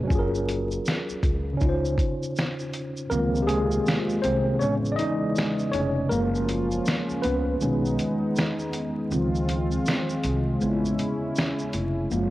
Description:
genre	lo-fi hip hop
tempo	80 BPM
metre	4/4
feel	swing 63% on 16ths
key	Db major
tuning	A4 = 445 Hz
part	tine electric piano	accompaniment	0.0-12.3 s	A2 to Ab5	-26 LUFS	equal	overdrive, fast stereo tremolo, cassette tape
part	upright bass	bass	0.0-12.3 s	F1 to Db2	-28 LUFS	equal	none
part	lo-fi sampler-style drum kit	drums	0.1-12.3 s	finger snaps, hi-hat, kick drum, shaker, snare drum	-28 LUFS	equal	cassette tape
part	warm analog pad	sustained chords	3.1-12.3 s	C3 to F4	-28 LUFS	equal	chorus, cassette tape
room	light reverb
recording	home recording on cassette, vinyl crackle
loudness	-23 LUFS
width	side -16 dB against mid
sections	0.0-3.1 A section; 3.1-12.3 A section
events	kick muted 3.1-12.3; tine electric piano solo 3.1-12.3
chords	0.1 Gbmaj7; 1.6 Dbmaj7; 4.6 Amaj7; 6.1 Gbmaj7; 7.6 Cb69; 9.1 Dbmaj7; 10.6 Amaj7

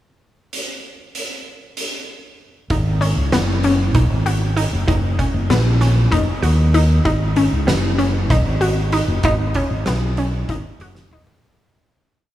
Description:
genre	progressive instrumental, band music in an uneven meter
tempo	193 BPM (eighths)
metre	7/8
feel	straight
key	G# minor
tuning	A4 = 439 Hz
part	oversized low-tuned drum kit	drums	0.5-11.4 s	hi-hat, kick drum, snare drum, toms	-23 LUFS	equal	none
part	analog pluck	arpeggios	2.7-11.3 s	B3 to F#4	-21 LUFS	left 1 dB	chorus
part	fingered electric bass	bass	2.7-11.4 s	F#1 to D#2	-17 LUFS	equal	none
room	moderate huge ambient reverb, RT60 4.9 s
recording	dreamy mix soaked in reverb, small room ambience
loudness	-15 LUFS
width	side -13 dB against mid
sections	0.5-2.7 pickup bar; 2.7-11.4 A section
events	fade-out 9.2-11.4; drum fill 11.0-11.4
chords	0.5 N.C.; 2.7 G#m7; 4.9 F#; 7.1 G#m7

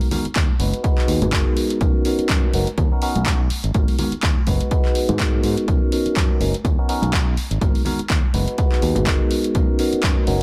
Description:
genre	filtered disco house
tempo	124 BPM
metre	4/4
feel	swing 57% on 16ths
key	unclear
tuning	A4 = 440 Hz
part	bell-like tine electric piano	accompaniment	0.0-10.4 s	G#3 to B4	-25 LUFS	equal	phaser, sidechain pumping, low-pass filter
part	punchy analog drum machine	drums	0.0-10.4 s	handclaps, hi-hat	-29 LUFS	equal	overdrive, sidechain pumping on hats
part	tube shaker and congas	percussion	0.0-10.4 s	none	-32 LUFS	equal	sidechain pumping on perc, low-pass filter on perc
part	modern bright fingered electric bass	bass	0.3-10.4 s	F#1 to G#2	-26 LUFS	equal	sidechain pumping, low-pass filter
part	electronic kick drum	drums	0.4-10.1 s	none	-22 LUFS	equal	none
room	little or no reverb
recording	none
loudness	-19 LUFS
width	mono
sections	0.0-10.4 A section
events	filter sweep 0.0-10.4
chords	0.0 G#m7; 1.8 Bmaj7; 3.5 G#m7; 5.7 Bmaj7; 7.4 G#m7; 9.6 Bmaj7

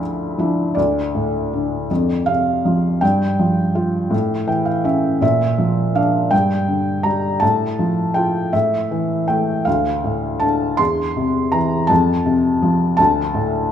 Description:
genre	classical, lyrical solo piano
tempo	54 BPM (dotted quarters)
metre	6/8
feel	rubato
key	D minor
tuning	A4 = 439 Hz
part	felt-muted upright piano	solo	0.0-13.7 s	D2 to C6	-16 LUFS	equal	none
room	moderate recital hall reverb, RT60 1.8 s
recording	minimal, uncompressed stereo recording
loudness	-16 LUFS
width	side -9 dB against mid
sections	0.8-13.7 A section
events	felt piano fill 4.1-5.2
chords	0.0 Dmadd9; 0.8 D5; 1.9 F5; 3.0 Fsus2/G; 4.1 A; 5.2 Bb; 6.3 G5; 7.4 Fadd9/A; 8.5 A5; 9.7 Dm; 10.8 C/E; 11.9 F; 13.0 D5

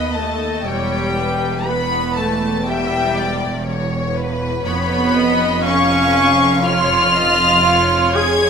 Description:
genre	classical, slow romantic movement for string orchestra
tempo	60 BPM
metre	4/4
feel	rubato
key	unclear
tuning	A4 = 440 Hz
part	warm studio violin section	melody	0.0-8.5 s	G5 to G#6	-19 LUFS	left 4 dB	none
part	warm studio violin section	second line	0.0-8.5 s	B4 to E#5	-23 LUFS	left 3 dB	none
part	warm studio viola section	accompaniment	0.0-8.5 s	G3 to G#4	-18 LUFS	right 2 dB	none
part	dark studio cello section	bass	0.0-8.5 s	D#2 to E#2	-26 LUFS	right 1 dB	none
part	dark studio double bass section	bass	0.0-8.5 s	E1 to D#2	-24 LUFS	right 2 dB	none
room	moderate scoring stage reverb, RT60 1.9 s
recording	minimal, uncompressed stereo recording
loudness	-14 LUFS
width	side -6 dB against mid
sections	0.0-8.5 A section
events	none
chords	0.0 B/D#; 0.7 Em; 4.7 C#7/E#

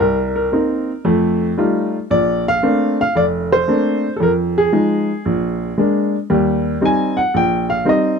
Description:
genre	solo jazz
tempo	115 BPM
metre	4/4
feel	swing 68% on 8ths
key	Bb major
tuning	A4 = 439 Hz
part	clear upright piano	solo	0.0-8.2 s	F1 to Ab5	-14 LUFS	equal	none
room	little or no reverb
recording	dry, close 1970s-style studio recording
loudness	-15 LUFS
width	side -6 dB against mid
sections	0.0-6.3 A section; 6.3-8.2 B section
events	upright piano solo 6.3-8.2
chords	0.0 Cm7; 1.1 F9; 2.1 Bbmaj9; 4.2 Fm7; 5.2 Bb7; 6.3 Eb6

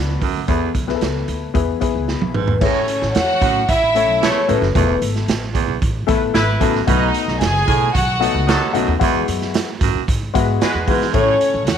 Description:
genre	uptempo 1960s-style soul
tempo	113 BPM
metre	4/4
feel	straight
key	A major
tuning	A4 = 440 Hz
part	dark upright piano	accompaniment	0.0-11.8 s	G#3 to B4	-21 LUFS	left 12 dB	none
part	upright bass	bass	0.0-11.8 s	E1 to E3	-22 LUFS	equal	none
part	raspy baritone saxophone	riff	0.2-11.4 s	D#2 to B2	-23 LUFS	right 13 dB	none
part	raw garage drum kit	drums	0.2-11.8 s	crash cymbal, hi-hat, kick drum, snare drum, toms	-21 LUFS	right 3 dB	none
part	vibraphone with medium mallets	melody	2.4-5.0, 10.9-11.8 s	B4 to F#5	-19 LUFS	left 1 dB	none
part	warm studio string section	second line	2.6-11.8 s	C#4 to G#5	-20 LUFS	equal	none
part	clear horn section	second line	4.0-11.0 s	F#3 to C#5	-23 LUFS	equal	none
room	light reverb, small room ambience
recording	1960s-style stereo with parts hard left and right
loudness	-15 LUFS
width	side -8 dB against mid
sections	0.0-2.6 A section; 2.6-11.8 B section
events	drum fill 2.1-2.6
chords	0.5 Esus4; 1.6 E; 2.6 A; 4.7 Esus4; 6.9 B7; 9.0 Eadd9; 11.1 A

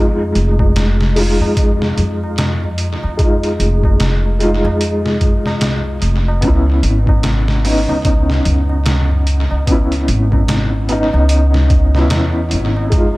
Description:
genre	trip hop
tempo	74 BPM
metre	4/4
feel	swing 59% on 16ths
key	unclear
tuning	A4 = 440 Hz
part	felt-muted upright piano	accompaniment	0.0-13.2 s	Ab3 to F4	-18 LUFS	left 1 dB	tremolo, low-pass filter, tape echo
part	upright bass	bass	0.0-13.2 s	F1 to F2	-15 LUFS	equal	none
part	tabla	percussion	0.2-13.1 s	none	-26 LUFS	equal	tape echo
part	trip hop sampler-style drum kit	drums	0.4-13.2 s	hi-hat, kick drum, snare drum	-17 LUFS	equal	tape echo
room	light reverb, small room ambience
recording	echo-heavy mix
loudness	-12 LUFS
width	side -20 dB against mid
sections	0.0-13.2 A section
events	filter sweep on felt piano 0.0-13.2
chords	0.0 Fm7; 6.4 Dbm7

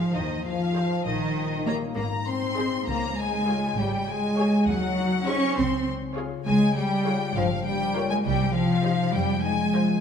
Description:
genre	cinematic, playful, whimsical film cue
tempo	67 BPM (dotted quarters)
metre	6/8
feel	straight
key	Ab major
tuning	A4 = 440 Hz
part	warm studio violin section	melody	0.0-10.0 s	Eb5 to F5	-47 LUFS	left 4 dB	none
part	rich studio violin section	second line	0.0-10.0 s	Eb5 to Db6	-30 LUFS	left 3 dB	none
part	warm studio viola section	accompaniment	0.0-10.0 s	F4 to Db5	-36 LUFS	right 1 dB	none
part	dark French horn section	sustained chords	0.0-10.0 s	Eb3 to Db4	-28 LUFS	left 3 dB	none
part	concert harp	arpeggios	0.0-10.0 s	G2 to Db5	-32 LUFS	left 6 dB	none
part	rich studio cello section	bass	0.0-10.0 s	Eb3 to Db4	-27 LUFS	right 2 dB	none
part	rich studio double bass section	bass	0.2-9.9 s	G1 to F2	-33 LUFS	right 5 dB	none
room	wet recital hall reverb, RT60 1.7 s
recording	minimal, uncompressed stereo recording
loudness	-22 LUFS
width	side -7 dB against mid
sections	0.0-10.0 A section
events	none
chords	0.0 Ab; 1.1 Eb7/Bb; 2.0 Ab; 2.9 Db; 4.7 Ab7/Eb; 5.6 Dbmaj7; 6.5 Db; 7.4 Gm7b5; 8.2 Cm; 9.1 Fm7

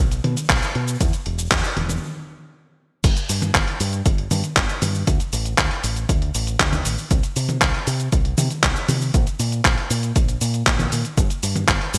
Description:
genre	italo disco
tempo	118 BPM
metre	4/4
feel	straight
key	unclear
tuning	A4 = 440 Hz
part	fingered electric bass with an envelope filter	bass	0.0-12.0 s	E1 to C3	-26 LUFS	equal	none
part	dusty soul sampler-style drum kit	drums	0.1-12.0 s	cabasa, crash cymbal, handclaps, hi-hat, toms	-24 LUFS	equal	gated reverb
part	electronic kick drum	drums	0.5-11.8 s	none	-23 LUFS	equal	none
room	light reverb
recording	bright 1980s-style digital production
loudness	-21 LUFS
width	mono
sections	0.0-3.0 A section; 3.0-12.0 B section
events	stop 2.0-3.0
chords	none

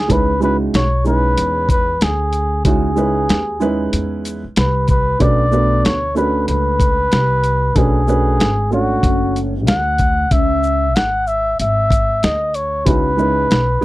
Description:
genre	hip hop, jazz-hop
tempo	94 BPM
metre	4/4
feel	swing 60% on 16ths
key	C# phrygian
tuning	A4 = 440 Hz
part	trumpet with cup mute	melody	0.0-13.8 s	F#4 to F#5	-18 LUFS	equal	none
part	upright bass	bass	0.0-13.8 s	F#1 to E2	-19 LUFS	equal	none
part	dark grand piano	accompaniment	0.1-13.8 s	G#3 to C#5	-19 LUFS	right 2 dB	none
part	dusty soul sampler-style drum kit	drums	0.1-13.8 s	hi-hat, kick drum, shaker, snare drum	-17 LUFS	equal	none
room	little or no reverb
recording	dry, close 1970s-style studio recording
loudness	-14 LUFS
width	side -17 dB against mid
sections	0.1-13.8 A section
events	none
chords	0.1 C#m9; 5.2 Bm9; 10.3 C#m9

